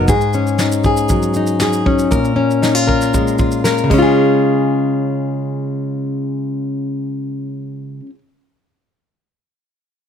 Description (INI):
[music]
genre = acoustic pop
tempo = 117 BPM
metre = 4/4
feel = straight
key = Db major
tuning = A4 = 437 Hz
[part]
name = fingerpicked plugged-in steel-string acoustic guitar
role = accompaniment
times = 0.0-8.2 s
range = Ab2 to Bb4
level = -15 LUFS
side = left 2 dB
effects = none
[part]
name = soft brush drum kit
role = drums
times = 0.1-4.0 s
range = crash cymbal, kick drum, shaker, snare drum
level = -19 LUFS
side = right 1 dB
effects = none
[sound]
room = little or no reverb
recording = none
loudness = -14 LUFS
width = side -8 dB against mid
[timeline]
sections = 0.0-4.2 A section; 4.2-8.3 B section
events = none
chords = 0.1 Ab7sus4; 2.1 Bbm7; 3.9 Db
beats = | 0.08 0.59 1.10 1.61 | 2.12 2.63 3.14 3.65 | 4.16 4.67 5.19 5.70 | 6.21 6.72 7.23 7.74